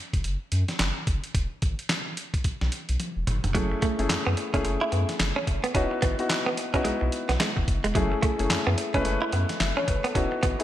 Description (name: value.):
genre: R&B, new jack swing.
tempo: 109 BPM.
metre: 4/4.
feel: swing 60% on 16ths.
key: F# dorian.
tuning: A4 = 443 Hz.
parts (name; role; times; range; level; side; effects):
round analog bass; bass; 0.1-10.6 s; E1 to F#2; -28 LUFS; equal; none.
dusty soul sampler-style drum kit; drums; 0.1-10.6 s; handclaps, hi-hat, kick drum, snare drum, toms; -27 LUFS; equal; gated reverb.
warm grand piano; accompaniment; 3.5-10.6 s; G#3 to E5; -28 LUFS; left 3 dB; none.
direct-recorded clean electric guitar; riff; 3.5-10.6 s; F#3 to E4; -29 LUFS; right 3 dB; lush chorus.
room: moderate lush hall reverb, RT60 1.7 s.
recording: bright 1980s-style digital production.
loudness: -24 LUFS.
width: side -12 dB against mid.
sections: 0.0-10.6 A section.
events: drum fill 3.0-3.5.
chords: 0.0 N.C.; 1.3 Eadd9; 3.5 F#m7; 5.7 C#m11/E (rootless); 8.0 F#m7.